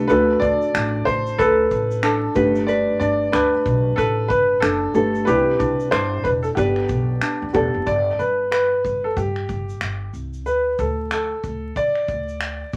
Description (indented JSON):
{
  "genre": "acoustic pop",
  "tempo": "93 BPM",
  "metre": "4/4",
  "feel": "swing 60% on 16ths",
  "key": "G major",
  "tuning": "A4 = 440 Hz",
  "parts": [
    { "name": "clear upright piano", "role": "melody", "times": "0.0-12.7 s", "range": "G4 to D5", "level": "-23 LUFS", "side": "equal", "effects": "none" },
    { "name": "felt-muted upright piano", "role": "accompaniment", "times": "0.0-7.9 s", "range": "A3 to D5", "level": "-26 LUFS", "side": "equal", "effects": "none" },
    { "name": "ukulele", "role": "accompaniment", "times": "0.0-8.4 s", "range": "D4 to B4", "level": "-26 LUFS", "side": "equal", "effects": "none" },
    { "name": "upright bass", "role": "bass", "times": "0.0-12.8 s", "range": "E1 to D3", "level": "-29 LUFS", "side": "equal", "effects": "none" },
    { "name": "modern studio drum kit", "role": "drums", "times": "0.1-12.8 s", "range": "finger snaps, kick drum, shaker", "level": "-31 LUFS", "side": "equal", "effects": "none" }
  ],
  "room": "moderate studio ambience, RT60 0.5 s",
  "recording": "vinyl crackle",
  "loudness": "-20 LUFS",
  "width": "mono",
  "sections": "0.0-7.9 A section; 7.9-12.8 B section",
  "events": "none",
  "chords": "0.1 D; 2.4 Gadd9; 5.3 Cadd9; 6.6 Gadd9; 7.9 Gadd11; 10.5 D5"
}